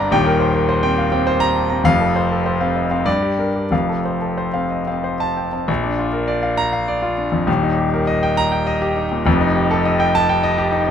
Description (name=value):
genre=classical, virtuoso piano study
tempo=88-105 BPM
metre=3/4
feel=rubato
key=Bb major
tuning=A4 = 440 Hz
part: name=clear concert grand piano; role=solo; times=0.0-10.9 s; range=Eb1 to Bb5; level=-16 LUFS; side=equal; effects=none
room=light reverb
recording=close, detailed microphones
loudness=-16 LUFS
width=side -8 dB against mid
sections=0.0-5.7 A section; 5.7-10.9 B section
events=none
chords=0.1 Cm7/Eb; 1.8 F; 3.1 Gm; 3.7 F; 5.7 Bb; 7.5 Eb; 9.3 F9